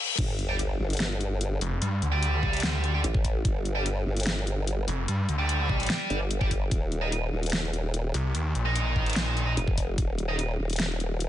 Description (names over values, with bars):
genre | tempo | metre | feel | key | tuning
heavy wobble dubstep | 147 BPM | 4/4 | half-time | G minor | A4 = 440 Hz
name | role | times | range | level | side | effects
reverse cymbal and sub drop | sound effects | 0.0-1.8 s | none | -33 LUFS | left 3 dB | none
formant-sweep wobble bass | bass | 0.2-11.3 s | Eb1 to A1 | -28 LUFS | equal | chorus, overdrive
dubstep drum kit | drums | 0.2-11.3 s | crash cymbal, hi-hat, snare drum | -32 LUFS | left 1 dB | overdrive
electronic kick drum | drums | 0.2-10.1 s | none | -27 LUFS | equal | overdrive
scooped high-gain guitar | stabs | 0.5-10.3 s | Eb4 to G5 | -32 LUFS | right 2 dB | distortion, ping-pong delay
snarling distorted saw bass | bass | 1.6-9.6 s | F1 to G2 | -26 LUFS | equal | distortion, overdrive
room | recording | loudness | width
digital ambience | high-pass filter, nothing above 10.3 kHz | -25 LUFS | side -12 dB against mid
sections
0.2-11.3 A section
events
break 0.0; reverse cymbal 0.0; drop 0.2-11.3; impact 0.2-1.8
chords
0.2 G5; 6.7 Eb5